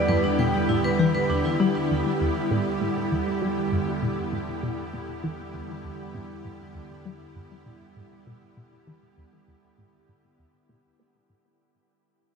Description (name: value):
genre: ambient, sequencer-driven space music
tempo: 99 BPM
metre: 4/4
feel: straight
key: E minor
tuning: A4 = 440 Hz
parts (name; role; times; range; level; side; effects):
- evolving wavetable pad; sustained chords; 0.0-11.6 s; D3 to G4; -27 LUFS; right 2 dB; ensemble chorus, built-in reverb
- vibraphone with hard mallets; arpeggios; 0.0-1.8 s; D4 to G5; -28 LUFS; left 1 dB; auto-pan, ping-pong delay
- analog drone; bass; 0.0-11.6 s; E2; -40 LUFS; equal; chorus
- resonant blip pluck; riff; 0.1-11.4 s; E2 to B3; -28 LUFS; left 2 dB; chorus, phaser, ping-pong delay
room: wet shimmer reverb, RT60 7.5 s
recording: none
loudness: -22 LUFS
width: side -5 dB against mid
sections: 0.0-11.6 A section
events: fade-out on synth drone 0.0-11.6; fade-out 0.0-11.6; filter sweep on synth arpeggio sound 0.0-11.6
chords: 0.0 Em7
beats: 0.09 0.69 1.30 | 1.90 2.51 3.12 3.72 | 4.33 4.93 5.54 6.15 | 6.75 7.36 7.96 8.57 | 9.18 9.78 10.39 10.99